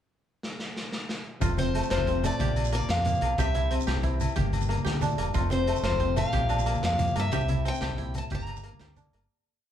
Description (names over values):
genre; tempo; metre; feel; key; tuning
highlife guitar band; 122 BPM (dotted quarters); 12/8; straight; F major; A4 = 440 Hz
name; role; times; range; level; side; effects
crunchy breakbeat drum kit; drums; 0.4-9.2 s; hi-hat, kick drum, snare drum; -34 LUFS; equal; none
semi-hollow electric guitar; accompaniment; 1.4-9.3 s; F2 to G4; -37 LUFS; left 4 dB; none
koto; arpeggios; 1.4-9.7 s; A3 to G4; -32 LUFS; right 1 dB; none
fingered electric bass; bass; 1.4-9.3 s; E1 to G2; -29 LUFS; equal; none
agogo bells; percussion; 1.4-9.3 s; none; -38 LUFS; left 8 dB; none
congas; percussion; 1.4-9.1 s; none; -34 LUFS; equal; none
shekere; percussion; 1.4-9.0 s; none; -38 LUFS; right 6 dB; none
picked acoustic archtop guitar; melody; 1.6-8.9 s; C5 to Bb5; -30 LUFS; left 1 dB; none
room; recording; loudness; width
moderate large studio reverb, RT60 1.3 s; band playing live in one room; -25 LUFS; side -10 dB against mid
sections
0.0-1.4 pickup bar; 1.4-9.3 A section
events
drum fill 0.4-1.4; fade-out 7.3-9.3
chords
0.0 N.C.; 1.4 F; 2.4 Bb6; 3.4 C; 4.4 Gm; 5.4 F; 6.3 Bb6; 7.3 C; 8.3 Gm